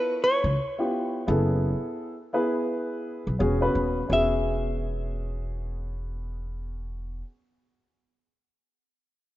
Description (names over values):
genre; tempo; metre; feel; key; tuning
hip hop; 85 BPM; 4/4; swing 61% on 16ths; E major; A4 = 441 Hz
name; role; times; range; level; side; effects
hollow-body jazz guitar; melody; 0.0-7.2 s; B4 to E5; -26 LUFS; equal; none
dark upright piano; accompaniment; 0.0-7.2 s; B3 to B4; -27 LUFS; equal; none
upright bass; bass; 0.4-7.2 s; D#1 to C#2; -28 LUFS; equal; none
room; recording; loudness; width
moderate lush hall reverb, RT60 2.4 s; rough home demo mix, nothing above 7.7 kHz; -24 LUFS; side -15 dB against mid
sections
0.0-4.1 A section; 4.1-6.9 B section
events
none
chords
0.0 C#7alt; 1.3 F#m11; 3.4 E69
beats
0.57 | 1.28 1.98 2.69 3.39 | 4.10 4.81 5.51 6.22